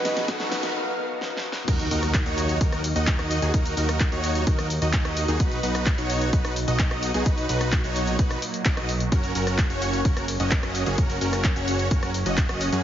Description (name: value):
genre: EDM, festival progressive house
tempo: 129 BPM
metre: 4/4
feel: straight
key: Eb minor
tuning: A4 = 439 Hz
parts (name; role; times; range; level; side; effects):
- marimba with medium mallets; melody; 0.0-0.8 s; D#5; -32 LUFS; right 2 dB; vintage 12-bit sampler grit, ping-pong delay
- clear grand piano; accompaniment; 0.0-1.7 s; B2 to F#4; -33 LUFS; left 3 dB; sidechain pumping, ping-pong delay
- lush unison pad; sustained chords; 0.0-12.8 s; Bb2 to F5; -33 LUFS; right 1 dB; chorus, phaser, vintage 12-bit sampler grit, sidechain pumping
- riser and impact; sound effects; 0.0-3.5 s; none; -36 LUFS; right 1 dB; none
- supersaw chords; riff; 0.1-12.8 s; Db4 to Eb5; -28 LUFS; right 1 dB; sidechain pumping, ping-pong delay
- big-room dance drum kit; drums; 0.1-12.8 s; cabasa, crash cymbal, handclaps, hi-hat, rim click, snare drum; -30 LUFS; equal; none
- electronic kick drum; drums; 0.3-12.5 s; none; -23 LUFS; equal; none
- fat analog bass; bass; 1.7-12.8 s; Gb1 to Gb2; -27 LUFS; equal; sidechain pumping
room: light reverb, digital ambience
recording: heavily compressed radio sound, high-pass filter, nothing above 7.5 kHz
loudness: -21 LUFS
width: side -10 dB against mid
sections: 0.0-1.7 A section; 1.7-12.8 B section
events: build-up 0.0-1.7; drum fill 0.0-0.7, 1.2-1.7; riser 0.0-0.7; filter sweep 0.0-1.7; break 0.7-1.7; drop 1.7-12.8; impact 1.7-3.5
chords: 0.0 B; 1.7 Ebm; 5.4 B; 9.1 Gb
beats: 0.28 0.75 1.21 | 1.68 2.14 2.61 3.07 | 3.54 4.00 4.47 4.93 | 5.40 5.86 6.33 6.79 | 7.26 7.72 8.19 8.65 | 9.12 9.59 10.05 10.52 | 10.98 11.45 11.91 12.38